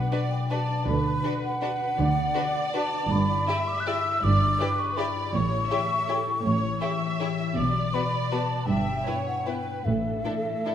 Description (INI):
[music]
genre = classical, orchestral ballroom waltz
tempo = 160 BPM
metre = 3/4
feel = uneven beats, rubato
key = B minor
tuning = A4 = 444 Hz
[part]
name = mellow hollow concert flute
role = second line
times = 0.0-10.7 s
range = E5 to F#6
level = -28 LUFS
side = equal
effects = none
[part]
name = warm symphonic viola section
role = accompaniment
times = 0.0-10.7 s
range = A4 to E5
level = -33 LUFS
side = right 1 dB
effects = none
[part]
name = concert harp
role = arpeggios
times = 0.0-10.7 s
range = G2 to D5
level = -31 LUFS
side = left 4 dB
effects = none
[part]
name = warm studio double bass section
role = bass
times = 0.0-10.2 s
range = G1 to D2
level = -29 LUFS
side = right 3 dB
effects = none
[part]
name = warm symphonic cello section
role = bass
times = 0.0-10.7 s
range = G2 to D3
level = -30 LUFS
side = right 3 dB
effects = none
[part]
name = warm studio violin section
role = melody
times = 0.1-10.7 s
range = A4 to D5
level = -38 LUFS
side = left 4 dB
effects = none
[part]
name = warm studio violin section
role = second line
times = 0.1-10.7 s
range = B3 to G4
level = -35 LUFS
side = left 2 dB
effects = none
[part]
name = timpani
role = percussion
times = 5.3-5.9, 9.9-10.4 s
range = A2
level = -35 LUFS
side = left 1 dB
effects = none
[sound]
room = wet scoring stage reverb, RT60 2.2 s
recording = none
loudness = -23 LUFS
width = side -9 dB against mid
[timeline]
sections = 0.0-10.7 A section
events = none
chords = 0.0 Bm; 0.9 Bm/D; 3.1 Em7/G; 5.3 A7; 7.6 Bm; 8.7 Em/G; 9.9 Asus4